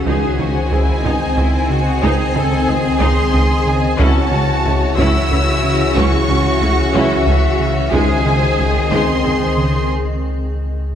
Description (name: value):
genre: cinematic, hybrid orchestral and electronic film score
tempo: 61 BPM (dotted quarters)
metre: 6/8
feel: straight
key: unclear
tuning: A4 = 440 Hz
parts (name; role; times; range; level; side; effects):
- rich symphonic violin section; second line; 0.0-9.9 s; F#4 to C#5; -24 LUFS; left 4 dB; none
- granular cloud pad; sustained chords; 0.0-9.9 s; C#3 to G#5; -23 LUFS; equal; built-in reverb
- mellow French horn section; sustained chords; 0.0-9.9 s; C#3 to B#3; -23 LUFS; left 5 dB; none
- clear symphonic cello section; bass; 0.0-9.9 s; D#4 to A4; -23 LUFS; right 2 dB; none
- warm symphonic violin section; melody; 0.1-9.9 s; E5 to E6; -22 LUFS; left 1 dB; none
- rich studio viola section; accompaniment; 0.1-9.3 s; G#3 to D#5; -24 LUFS; equal; none
- analog pluck; arpeggios; 0.1-9.4 s; F#3 to G#4; -28 LUFS; right 3 dB; none
- round analog bass; riff; 0.1-9.8 s; C#2 to C#3; -20 LUFS; right 1 dB; none
- pure sine sub bass; bass; 0.1-10.9 s; C#2; -21 LUFS; equal; none
- rich symphonic double bass section; bass; 0.1-9.3 s; C#2; -22 LUFS; right 2 dB; none
room: moderate scoring stage reverb, RT60 2.0 s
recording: dark, warm production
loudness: -13 LUFS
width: side -9 dB against mid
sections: 0.0-10.9 A section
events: break 9.9-10.9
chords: 0.1 G#/C#; 4.0 F#m7/C#; 7.9 G#/C#